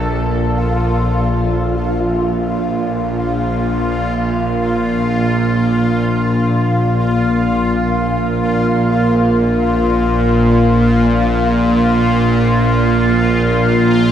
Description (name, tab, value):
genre	dark ambient drone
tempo	free time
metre	none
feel	none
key	unclear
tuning	A4 = 440 Hz
part	bowed-like drone	drone	0.0-14.1 s	Bb1 to Bb2	-14 LUFS	equal	built-in reverb
part	bubbling stepped-filter texture	texture	0.0-14.1 s	F4	-20 LUFS	left 1 dB	chorus, built-in reverb
part	deep dark ambient pad	sustained chords	2.6-14.1 s	Bb3 to Bb4	-22 LUFS	right 2 dB	chorus, built-in reverb
room	wet huge ambient reverb, RT60 7.8 s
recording	in a vast, echoing space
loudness	-13 LUFS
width	side -10 dB against mid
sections	0.1-14.1 A section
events	fade-in on ambient pad 0.1-14.1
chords	0.1 Bb5